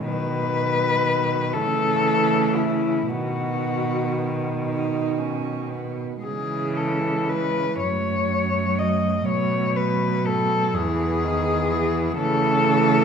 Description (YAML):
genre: classical, lyrical piece for cello ensemble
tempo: 37-42 BPM (dotted quarters)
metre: 6/8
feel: rubato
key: unclear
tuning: A4 = 440 Hz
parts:
  - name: muted cello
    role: second line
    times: 0.0-13.0 s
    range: F#3 to D#4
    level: -28 LUFS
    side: right 10 dB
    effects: none
  - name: muted cello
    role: accompaniment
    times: 0.0-13.0 s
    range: D#3 to F#3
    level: -27 LUFS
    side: equal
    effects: none
  - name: muted cello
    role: bass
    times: 0.0-13.0 s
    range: E2 to C#3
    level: -27 LUFS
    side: right 3 dB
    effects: none
  - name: muted cello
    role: melody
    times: 0.1-13.0 s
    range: E4 to D#5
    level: -23 LUFS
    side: left 4 dB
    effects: none
room: wet recital hall reverb, RT60 1.6 s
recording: minimal, uncompressed stereo recording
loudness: -20 LUFS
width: side -6 dB against mid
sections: 0.0-13.0 A section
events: none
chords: 0.1 B; 1.5 A/C#; 3.1 B; 6.3 C#m; 7.8 F#m; 9.3 B5; 10.7 E; 12.2 A/C#